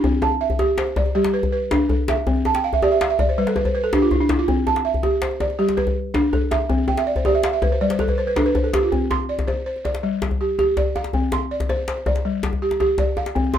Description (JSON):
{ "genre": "west african traditional, West African string and xylophone music", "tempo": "108 BPM (dotted quarters)", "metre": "12/8", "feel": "straight", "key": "C major", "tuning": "A4 = 440 Hz", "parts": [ { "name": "balafon", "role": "arpeggios", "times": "0.0-13.6 s", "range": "G3 to C6", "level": "-20 LUFS", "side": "right 2 dB", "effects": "none" }, { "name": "djembe", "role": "percussion", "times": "0.0-13.6 s", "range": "none", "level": "-23 LUFS", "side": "left 2 dB", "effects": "none" } ], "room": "light reverb", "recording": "minimal, uncompressed stereo recording", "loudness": "-18 LUFS", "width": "side -9 dB against mid", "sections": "0.0-8.9 A section; 8.9-13.6 B section", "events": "balafon fill 2.4-4.5, 6.9-8.9", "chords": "0.0 C; 1.2 G; 2.3 C; 3.4 G5; 4.5 C; 5.6 G; 6.7 C; 7.8 G5; 8.9 Csus2; 10.0 G5; 11.1 Csus24; 12.3 G5" }